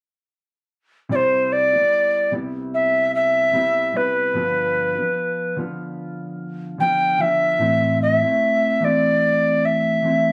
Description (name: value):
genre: indie pop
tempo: 74 BPM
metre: 4/4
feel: swing 55% on 16ths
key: C major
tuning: A4 = 440 Hz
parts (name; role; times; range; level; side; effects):
- mellow reedy alto recorder; melody; 1.1-10.3 s; B4 to G5; -20 LUFS; equal; none
- mellow electric guitar; accompaniment; 1.1-10.3 s; G2 to F4; -27 LUFS; equal; warbly pitch drift
room: wet studio reverb, RT60 0.5 s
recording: band playing live in one room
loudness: -19 LUFS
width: mono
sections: 1.1-10.3 A section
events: none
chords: 1.1 Cmaj7; 4.4 G7; 7.6 Am